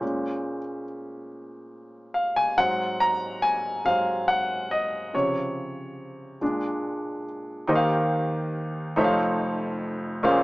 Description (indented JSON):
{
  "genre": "gospel",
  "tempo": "47 BPM (dotted quarters)",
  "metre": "6/8",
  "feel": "straight",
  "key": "unclear",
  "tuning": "A4 = 441 Hz",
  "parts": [
    { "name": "warm grand piano", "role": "solo", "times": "0.0-10.4 s", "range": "F1 to Bb5", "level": "-24 LUFS", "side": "equal", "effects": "none" }
  ],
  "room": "moderate studio reverb, RT60 0.7 s",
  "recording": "band playing live in one room, small speaker sound",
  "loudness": "-23 LUFS",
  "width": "side -20 dB against mid",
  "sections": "0.0-7.7 A section; 7.7-10.4 B section",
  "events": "grand piano solo 0.0-7.7",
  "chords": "0.0 Bbm7; 2.6 Ab7; 5.1 Dbmaj7; 6.4 Bb7#9; 7.7 Eb69; 9.0 F7b13",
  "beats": "| 0.02 1.30 | 2.58 3.86 | 5.13 6.41 | 7.69 8.97 | 10.24"
}